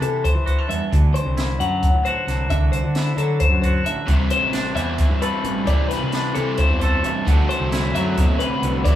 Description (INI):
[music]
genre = math rock and midwest emo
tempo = 265 BPM (eighths)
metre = 7/8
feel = straight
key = unclear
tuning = A4 = 440 Hz
[part]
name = twangy electric guitar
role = accompaniment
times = 0.0-9.0 s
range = E2 to A4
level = -26 LUFS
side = right 4 dB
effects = spring reverb
[part]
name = twelve-string electric guitar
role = arpeggios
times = 0.0-9.0 s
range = A4 to F#5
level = -24 LUFS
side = left 4 dB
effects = none
[part]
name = fuzz fingered electric bass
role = bass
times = 0.0-9.0 s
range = A1 to E3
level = -23 LUFS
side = equal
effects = overdrive
[part]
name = compact cocktail drum kit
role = drums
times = 0.0-9.0 s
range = hi-hat, kick drum, snare drum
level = -20 LUFS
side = equal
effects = none
[part]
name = raw garage guitar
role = riff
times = 4.1-9.0 s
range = C3 to F#4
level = -25 LUFS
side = left 1 dB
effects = overdrive
[sound]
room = moderate stone room reverb, RT60 1.1 s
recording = band playing live in one room, small room ambience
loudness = -17 LUFS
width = side -12 dB against mid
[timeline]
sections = 0.0-9.0 A section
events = none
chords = 0.0 C69; 0.9 D9; 4.1 C69; 7.3 D9